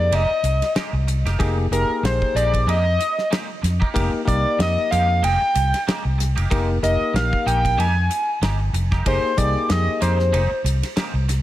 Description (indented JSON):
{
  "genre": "electric jazz fusion",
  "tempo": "94 BPM",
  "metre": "4/4",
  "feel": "swing 56% on 16ths",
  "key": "F dorian",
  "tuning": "A4 = 445 Hz",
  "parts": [
    { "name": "overdriven synth lead", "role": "melody", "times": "0.0-10.6 s", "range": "Bb4 to Ab5", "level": "-22 LUFS", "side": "equal", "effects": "tape echo" },
    { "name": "bell-like tine electric piano", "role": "accompaniment", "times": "0.0-10.4 s", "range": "Bb3 to Bb4", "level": "-27 LUFS", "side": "left 3 dB", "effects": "none" },
    { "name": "fingered electric bass", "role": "bass", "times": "0.0-11.4 s", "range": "F1 to F2", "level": "-20 LUFS", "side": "equal", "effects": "none" },
    { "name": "twangy electric guitar", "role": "stabs", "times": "0.1-11.3 s", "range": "Ab3 to G4", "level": "-31 LUFS", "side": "right 4 dB", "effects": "ensemble chorus" },
    { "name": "damped 70s drum kit", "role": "drums", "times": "0.1-11.4 s", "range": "hi-hat, kick drum, ride cymbal, snare drum", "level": "-26 LUFS", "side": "equal", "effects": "none" }
  ],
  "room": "light reverb, small room ambience",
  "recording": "none",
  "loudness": "-18 LUFS",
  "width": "side -14 dB against mid",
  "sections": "0.0-11.4 A section",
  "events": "analog synth lead solo 0.0-11.4",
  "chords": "0.0 Fm11"
}